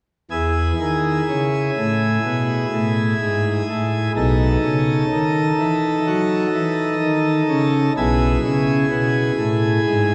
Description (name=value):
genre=classical, chorale-style piece for pipe organ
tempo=63 BPM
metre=4/4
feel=straight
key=E major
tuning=A4 = 440 Hz
part: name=pipe organ, plenum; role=solo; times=0.3-10.1 s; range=B1 to A4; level=-19 LUFS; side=equal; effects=none
room=wet church reverb, RT60 2.8 s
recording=dark, warm production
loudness=-19 LUFS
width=mono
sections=0.3-10.1 A section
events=none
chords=0.3 E; 4.2 B7; 8.0 E/B